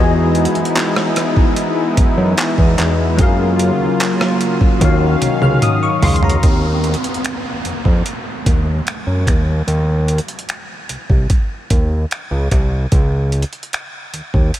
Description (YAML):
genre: contemporary R&B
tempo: 74 BPM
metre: 4/4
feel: straight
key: unclear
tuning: A4 = 440 Hz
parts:
  - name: bell-like tine electric piano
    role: accompaniment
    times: 0.0-6.6 s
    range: Eb3 to F6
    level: -20 LUFS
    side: left 3 dB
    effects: ensemble chorus
  - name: warm analog pad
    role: sustained chords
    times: 0.0-6.4 s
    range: Db3 to F5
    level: -20 LUFS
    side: equal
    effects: chorus
  - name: fat analog bass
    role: bass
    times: 0.0-14.5 s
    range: C2 to Gb2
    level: -16 LUFS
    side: equal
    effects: none
  - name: dusty soul sampler-style drum kit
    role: drums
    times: 0.3-14.6 s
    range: finger snaps, handclaps, hi-hat, kick drum, rim click, toms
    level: -17 LUFS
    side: equal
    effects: overdrive
  - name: downlifter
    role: sound effects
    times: 6.4-12.9 s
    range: none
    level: -27 LUFS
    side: right 1 dB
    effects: none
room: moderate huge ambient reverb, RT60 7.9 s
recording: dreamy mix soaked in reverb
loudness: -13 LUFS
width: side -12 dB against mid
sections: 0.0-6.4 A section; 6.4-14.6 B section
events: drum fill 4.8-6.4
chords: 0.0 Emaj7; 3.2 Gbmaj7; 4.8 Ebm9; 6.4 Ebm; 9.3 Cm; 12.9 Dbsus2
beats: 0.76 1.57 2.38 | 3.19 4.00 4.81 5.62 | 6.43 7.25 8.05 8.87 | 9.68 10.49 11.30 12.11 | 12.92 13.73 14.54